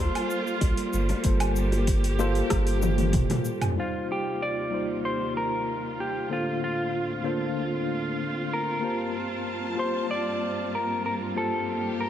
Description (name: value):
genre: sunset chillout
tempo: 95 BPM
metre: 4/4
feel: straight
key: G minor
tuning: A4 = 440 Hz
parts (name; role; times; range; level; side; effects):
- clean electric guitar; melody; 0.0-12.1 s; F4 to D5; -30 LUFS; left 1 dB; spring reverb, digital delay
- bright tine electric piano; accompaniment; 0.0-12.1 s; D3 to A5; -31 LUFS; left 1 dB; auto-pan, low-pass filter, tape echo
- rich studio string section; sustained chords; 0.0-12.1 s; D2 to A5; -32 LUFS; right 2 dB; none
- warm sub bass; bass; 0.0-3.2 s; D1 to Bb1; -26 LUFS; equal; none
- deep house drum kit; drums; 0.2-3.7 s; hi-hat, rim click, shaker, toms, woodblock; -29 LUFS; equal; overdrive
- electronic kick drum; drums; 0.6-3.3 s; none; -26 LUFS; equal; overdrive
- bongos; percussion; 0.6-3.4 s; none; -36 LUFS; left 2 dB; none
room: light reverb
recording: none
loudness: -24 LUFS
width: side -10 dB against mid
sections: 0.0-3.8 A section; 3.8-12.1 B section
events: drum fill 2.8-3.8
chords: 0.0 Gm11; 3.8 Eb69; 6.3 Bbmaj9/D; 8.8 Gm11